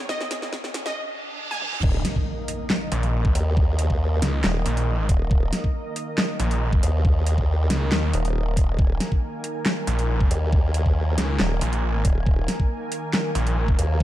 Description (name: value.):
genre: heavy wobble dubstep.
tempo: 138 BPM.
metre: 4/4.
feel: half-time.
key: unclear.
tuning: A4 = 438 Hz.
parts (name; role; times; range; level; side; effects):
wide unison pluck; melody; 0.0-1.8 s; Eb5 to Ab5; -32 LUFS; equal; ping-pong delay.
supersaw chords; sustained chords; 0.0-14.0 s; Eb2 to Ab5; -31 LUFS; right 1 dB; sidechain pumping, low-pass filter.
riser, reverse cymbal and impact; sound effects; 0.0-3.6 s; none; -32 LUFS; right 1 dB; none.
dubstep drum kit; drums; 0.1-13.9 s; crash cymbal, handclaps, hi-hat, snare drum, toms; -28 LUFS; equal; none.
electronic kick drum; drums; 0.1-14.0 s; none; -21 LUFS; equal; none.
formant-sweep wobble bass; bass; 1.8-14.0 s; Eb1 to Eb2; -22 LUFS; equal; chorus, overdrive.
snarling distorted saw bass; bass; 2.9-13.8 s; Bb1 to Eb2; -23 LUFS; equal; distortion, overdrive.
room: little or no reverb.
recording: dark, warm production, high-pass filter.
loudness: -20 LUFS.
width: side -14 dB against mid.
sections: 0.0-1.8 A section; 1.8-14.0 B section.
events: build-up 0.0-1.8; drum fill 0.0-1.0, 1.5-1.8; riser 0.0-1.8; filter sweep 0.0-1.8; reverse cymbal 1.0-1.8; drop 1.8-14.0; impact 1.8-3.6.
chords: 0.0 Eb5.